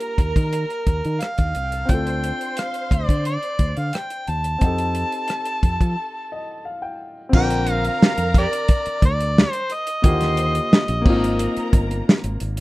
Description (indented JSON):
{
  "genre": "lush 1970s-style soul",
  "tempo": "88 BPM",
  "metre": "4/4",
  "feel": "straight",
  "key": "Bb major",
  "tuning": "A4 = 440 Hz",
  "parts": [
    { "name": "overdriven harmonica", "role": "melody", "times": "0.0-11.7 s", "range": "G4 to A5", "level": "-25 LUFS", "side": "equal", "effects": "slapback echo" },
    { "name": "warm studio violin section", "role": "second line", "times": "0.0-12.4 s", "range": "D4 to C6", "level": "-32 LUFS", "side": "equal", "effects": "slapback echo" },
    { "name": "warm baby grand piano", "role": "accompaniment", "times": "0.0-12.6 s", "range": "D3 to G5", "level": "-26 LUFS", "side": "left 2 dB", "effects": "none" },
    { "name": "warm soul drum kit", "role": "drums", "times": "0.0-12.6 s", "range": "crash cymbal, hi-hat, kick drum, rim click, snare drum", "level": "-17 LUFS", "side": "equal", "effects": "none" },
    { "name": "fingered electric bass", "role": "bass", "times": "0.2-12.6 s", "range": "G1 to F3", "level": "-24 LUFS", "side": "equal", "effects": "none" }
  ],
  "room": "little or no reverb",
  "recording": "rough home demo mix",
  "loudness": "-18 LUFS",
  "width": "side -19 dB against mid",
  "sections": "0.0-7.3 A section; 7.3-12.6 B section",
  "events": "break 6.0-7.3; grand piano fill 6.0-7.3",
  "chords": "0.0 Ebmaj9; 1.9 Dm7; 4.6 F9; 7.3 Bb; 10.0 Ebmaj9; 11.1 Ab69",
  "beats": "0.53 1.21 | 1.89 2.57 3.25 3.94 | 4.62 5.30 5.98 6.66 | 7.33 8.01 8.69 9.37 | 10.04 10.72 11.39 12.07"
}